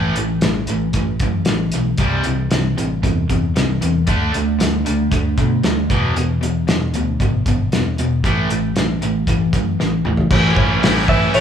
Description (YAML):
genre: classic rock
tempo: 115 BPM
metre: 4/4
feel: straight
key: unclear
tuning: A4 = 440 Hz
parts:
  - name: overdriven electric guitar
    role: riff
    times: 0.0-11.4 s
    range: E2 to E4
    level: -24 LUFS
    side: left 8 dB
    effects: none
  - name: overdriven electric guitar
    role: riff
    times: 0.0-11.4 s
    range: E2 to E4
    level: -22 LUFS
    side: right 5 dB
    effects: none
  - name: fingered electric bass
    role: bass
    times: 0.0-11.4 s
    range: E1 to B2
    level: -20 LUFS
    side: equal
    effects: none
  - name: cloth-damped thuddy drum kit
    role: drums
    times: 0.2-11.4 s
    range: crash cymbal, hi-hat, kick drum, snare drum, toms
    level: -19 LUFS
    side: equal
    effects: none
  - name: cowbell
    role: percussion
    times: 10.3-11.4 s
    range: none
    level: -28 LUFS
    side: left 7 dB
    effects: none
  - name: clean lap steel guitar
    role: melody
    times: 11.1-11.4 s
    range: C#5 to E5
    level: -17 LUFS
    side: right 2 dB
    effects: none
  - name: smooth overdriven lead guitar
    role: second line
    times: 11.1-11.4 s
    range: A4 to B4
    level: -26 LUFS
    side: right 2 dB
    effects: none
room: moderate large studio reverb, RT60 1.2 s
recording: band playing live in one room, studio ambience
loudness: -15 LUFS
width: side -8 dB against mid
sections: 0.0-10.3 A section; 10.3-11.4 B section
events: drum fill 9.8-10.3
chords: 0.0 A5; 2.0 C; 4.1 D5; 5.9 E; 8.2 A5; 10.3 A